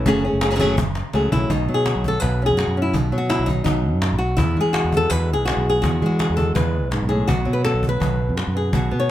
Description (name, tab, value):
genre	flamenco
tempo	166 BPM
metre	4/4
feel	straight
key	unclear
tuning	A4 = 440 Hz
part	flamenco guitar	melody	0.0-9.1 s	E2 to C#5	-21 LUFS	left 1 dB	none
part	fretless electric bass	bass	0.0-9.1 s	F#1 to E3	-22 LUFS	right 1 dB	none
part	cajon	percussion	0.1-8.9 s	none	-25 LUFS	left 1 dB	none
room	light reverb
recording	close, detailed microphones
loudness	-18 LUFS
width	side -12 dB against mid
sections	0.0-1.5 A section; 1.5-9.1 B section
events	drum fill 1.0-1.5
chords	0.1 F#madd9; 1.5 B; 4.4 Eadd9; 7.3 B5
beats	| 0.07 0.42 0.78 1.14 | 1.50 1.86 2.22 2.58 | 2.94 3.30 3.67 4.03 | 4.39 4.75 5.11 5.47 | 5.83 6.20 6.56 6.92 | 7.28 7.65 8.01 8.37 | 8.73 9.10